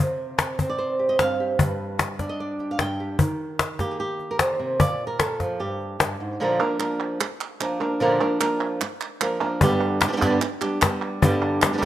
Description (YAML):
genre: flamenco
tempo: 150 BPM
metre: 4/4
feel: straight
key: unclear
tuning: A4 = 441 Hz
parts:
  - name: flamenco guitar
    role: melody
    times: 0.0-11.9 s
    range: G2 to G5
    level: -23 LUFS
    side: right 2 dB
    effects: slapback echo
  - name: cajon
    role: percussion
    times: 0.4-6.2, 9.6-11.9 s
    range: none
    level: -22 LUFS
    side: left 2 dB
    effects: none
  - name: palmas hand claps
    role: percussion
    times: 6.6-11.9 s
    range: none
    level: -29 LUFS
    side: right 7 dB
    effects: none
room: light reverb, small room ambience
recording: rough home demo mix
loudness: -21 LUFS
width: side -12 dB against mid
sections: 0.0-6.4 A section; 6.4-11.9 B section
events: none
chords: 0.0 C5; 1.6 G; 3.2 Eb; 4.8 Bb5; 5.6 Gm; 6.4 Bb; 9.6 G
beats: 0.39 0.79 1.19 | 1.59 1.99 2.39 2.79 | 3.19 3.60 4.00 4.40 | 4.80 5.20 5.60 6.00 | 6.41 6.81 7.21 7.61 | 8.01 8.41 8.81 9.21 | 9.61 10.01 10.42 10.82 | 11.22 11.62